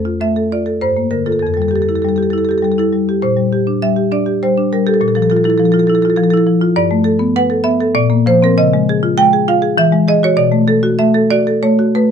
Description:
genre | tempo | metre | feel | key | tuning
classical, contemporary piece for solo marimba | 100 BPM | 3/4 | uneven beats, rubato | F major | A4 = 440 Hz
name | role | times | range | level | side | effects
marimba with medium hard mallets | solo | 0.0-12.1 s | F2 to G5 | -11 LUFS | equal | none
room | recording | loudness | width
light reverb | dark, warm production | -11 LUFS | side -7 dB against mid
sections
0.0-12.1 A section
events
none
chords
0.0 F; 0.8 Gm7; 1.4 Fmaj9; 3.2 Bb69; 5.0 Fmaj7/Bb; 6.8 Gadd9; 7.9 Bbadd9; 8.6 C#add9; 9.8 Eadd9; 10.4 Bm7

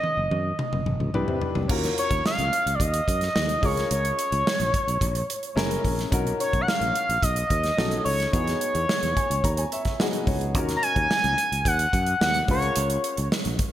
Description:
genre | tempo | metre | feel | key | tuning
polished 1980s jazz-funk pop | 108 BPM | 4/4 | straight | unclear | A4 = 439 Hz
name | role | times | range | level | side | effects
expressive synth lead | melody | 0.0-13.3 s | C#5 to A#5 | -25 LUFS | equal | chorus
warm baby grand piano | accompaniment | 0.0-13.7 s | B3 to A#5 | -31 LUFS | left 2 dB | lush chorus
modern studio drum kit | drums | 0.0-13.7 s | crash cymbal, hi-hat, kick drum, snare drum, toms | -27 LUFS | equal | gated reverb
sustaining fretless electric bass | bass | 0.2-13.6 s | F#1 to C3 | -28 LUFS | equal | none
room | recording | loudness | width
moderate plate reverb, RT60 2.2 s | bright 1980s-style digital production | -22 LUFS | side -12 dB against mid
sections
0.0-1.7 A section; 1.7-13.7 B section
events
drum fill 0.0-1.7; grand piano fill 8.9-10.5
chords
0.0 F#6; 1.1 Cmaj7; 1.7 D#m7; 3.6 A#m7/C#; 5.6 F#9; 6.1 Bmaj9; 7.8 B7; 8.3 Emaj9; 10.5 D#m7; 12.5 A#m7/C#

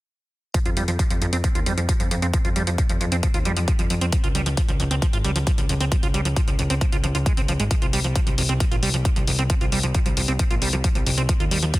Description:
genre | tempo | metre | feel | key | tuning
uplifting trance | 134 BPM | 4/4 | straight | F minor | A4 = 440 Hz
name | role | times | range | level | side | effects
liquid acid bass | arpeggios | 0.5-11.8 s | F2 to F4 | -27 LUFS | right 3 dB | chorus, sidechain pumping, tape echo
electronic hi-hat | drums | 0.5-11.8 s | none | -29 LUFS | left 2 dB | none
electronic kick drum | drums | 0.5-11.8 s | none | -22 LUFS | equal | none
plucky analog bass | bass | 0.7-11.7 s | Ab1 to F2 | -24 LUFS | equal | sidechain pumping
room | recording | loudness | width
little or no reverb | dense, heavily limited modern master | -19 LUFS | side -18 dB against mid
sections
0.5-11.8 A section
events
none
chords
0.5 F5; 4.1 Db; 7.7 Bbsus2 (rootless); 11.3 Ebadd9

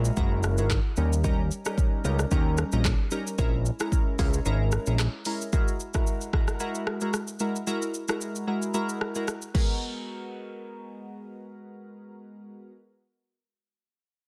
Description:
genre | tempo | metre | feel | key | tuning
afrobeats | 112 BPM | 4/4 | swing 55% on 16ths | G# minor | A4 = 439 Hz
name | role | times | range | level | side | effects
glassy digital keys | accompaniment | 0.0-12.7 s | G3 to A#4 | -34 LUFS | equal | chorus, phaser
fat analog bass | bass | 0.0-5.1 s | F#1 to D#2 | -27 LUFS | equal | none
afro-pop drum kit | drums | 0.1-9.7 s | crash cymbal, handclaps, hi-hat, kick drum, rim click, shaker | -30 LUFS | equal | vintage 12-bit sampler grit, soft clipping on snare
room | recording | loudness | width
digital ambience | dense, heavily limited modern master | -27 LUFS | mono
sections
0.0-5.5 A section; 5.5-9.8 B section; 9.8-14.1 C section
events
kick muted 4.5-5.5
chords
0.0 F#9; 1.0 D#7; 3.4 A#m7b5; 5.5 F#9; 9.5 G#m9

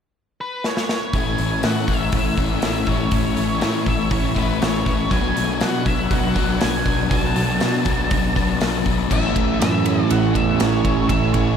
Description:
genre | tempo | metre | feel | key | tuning
rock, shoegaze and dream pop | 120 BPM | 4/4 | straight | A major | A4 = 442 Hz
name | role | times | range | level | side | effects
octave-fuzz lead guitar | melody | 0.4-11.6 s | B4 to A5 | -26 LUFS | right 1 dB | distortion, diffuse ambient delay
big rock drum kit | drums | 0.6-11.5 s | crash cymbal, hi-hat, kick drum, ride cymbal, snare drum | -23 LUFS | equal | none
crunchy overdriven guitar | riff | 1.1-11.6 s | A2 to E4 | -23 LUFS | left 8 dB | wide subtle chorus
crunchy overdriven guitar | riff | 1.1-11.6 s | A2 to F#4 | -24 LUFS | right 8 dB | reverse reverb
growling fingered electric bass | bass | 1.1-11.5 s | A1 to B2 | -25 LUFS | equal | overdrive
ethereal airy pad | sustained chords | 10.0-11.6 s | E4 to C#6 | -29 LUFS | right 3 dB | ensemble chorus, built-in reverb
room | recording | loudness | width
moderate huge ambient reverb, RT60 7.5 s | dreamy mix soaked in reverb | -17 LUFS | side -8 dB against mid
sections
0.0-1.1 A section; 1.1-9.1 B section; 9.1-11.6 C section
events
drum fill 0.6-1.1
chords
0.0 N.C.; 1.1 A; 5.1 Bm7; 9.1 Amaj7

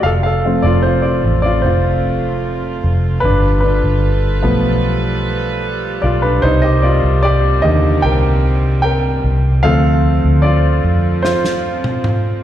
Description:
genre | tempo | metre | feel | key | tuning
pop ballad | 75 BPM | 4/4 | straight | unclear | A4 = 440 Hz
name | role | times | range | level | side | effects
clear baby grand piano | accompaniment | 0.0-12.4 s | D3 to G5 | -16 LUFS | left 1 dB | slapback echo
dark studio string section | sustained chords | 0.0-12.4 s | C3 to B4 | -23 LUFS | right 4 dB | none
vintage muted fingered electric bass | bass | 0.0-12.4 s | F1 to F2 | -15 LUFS | equal | none
natural country drum kit | drums | 11.2-12.2 s | snare drum, toms | -19 LUFS | equal | none
room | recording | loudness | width
little or no reverb | live gig heard through the venue's PA, recital hall reverb | -12 LUFS | side -11 dB against mid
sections
0.0-12.4 A section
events
grand piano solo 0.0-12.4; drum fill 11.2-12.4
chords
0.0 F; 3.2 G7; 6.4 Cm7; 9.6 Dm7

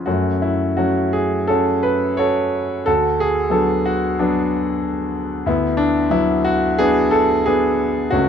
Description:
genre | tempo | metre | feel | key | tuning
classical, lyrical solo piano | 82-95 BPM | 4/4 | rubato | unclear | A4 = 440 Hz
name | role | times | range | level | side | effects
clear concert grand piano | solo | 0.0-8.3 s | C#2 to C#5 | -16 LUFS | equal | none
room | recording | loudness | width
moderate studio reverb, RT60 0.5 s | dark, warm production | -16 LUFS | side -8 dB against mid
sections
0.0-8.3 A section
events
none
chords
0.1 F#m; 2.9 Bm/D

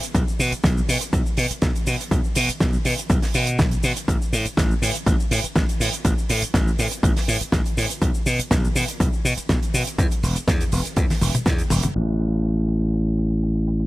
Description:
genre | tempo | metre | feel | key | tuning
nu-disco, nu disco | 122 BPM | 4/4 | straight | unclear | A4 = 440 Hz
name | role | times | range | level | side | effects
damped 70s drum kit | drums | 0.0-13.9 s | crash cymbal, hi-hat, shaker, snare drum, toms | -26 LUFS | right 1 dB | low-pass filter on hats, low-pass filter on toms, low-pass filter on cymbals, low-pass filter on snare, low-pass filter on perc, low-pass filter on room
slap bass | bass | 0.1-13.9 s | E1 to B2 | -21 LUFS | equal | none
electronic kick drum | drums | 0.1-11.6 s | none | -22 LUFS | equal | overdrive
room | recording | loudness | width
light reverb | low-pass filter | -19 LUFS | side -18 dB against mid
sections
0.0-12.0 A section; 12.0-13.9 B section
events
drum fill 11.0-12.0; filter sweep 12.0-13.9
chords
none

